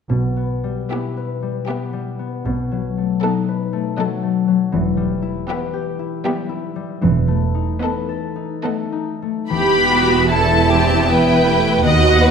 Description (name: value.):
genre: classical, slow romantic movement for symphony orchestra.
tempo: 66-82 BPM.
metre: 3/4.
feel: rubato.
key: E minor.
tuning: A4 = 440 Hz.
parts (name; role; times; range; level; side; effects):
concert harp; arpeggios; 0.1-12.3 s; B2 to B4; -22 LUFS; left 6 dB; none.
dark studio cello section; bass; 0.1-12.3 s; D#2 to B2; -21 LUFS; right 3 dB; none.
rich studio double bass section; bass; 0.1-12.3 s; E1 to D#2; -22 LUFS; right 4 dB; none.
rich studio violin section; melody; 0.9-12.3 s; D#5 to B5; -19 LUFS; left 2 dB; none.
rich studio violin section; second line; 0.9-12.3 s; G4 to D#5; -21 LUFS; left 1 dB; none.
rich chamber viola section; accompaniment; 0.9-12.3 s; A3 to G4; -21 LUFS; right 4 dB; none.
room: moderate scoring stage reverb, RT60 1.6 s.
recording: minimal, uncompressed stereo recording.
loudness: -16 LUFS.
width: side -6 dB against mid.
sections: 0.1-9.5 A section; 9.5-12.3 B section.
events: none.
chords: 0.1 Em/B; 2.5 B7; 4.7 Em; 7.0 B7/E; 9.5 Em.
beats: | 0.09 0.91 1.68 | 2.45 3.23 3.98 | 4.73 5.49 6.25 | 7.03 7.82 8.64 | 9.51 10.31 11.10 | 11.85.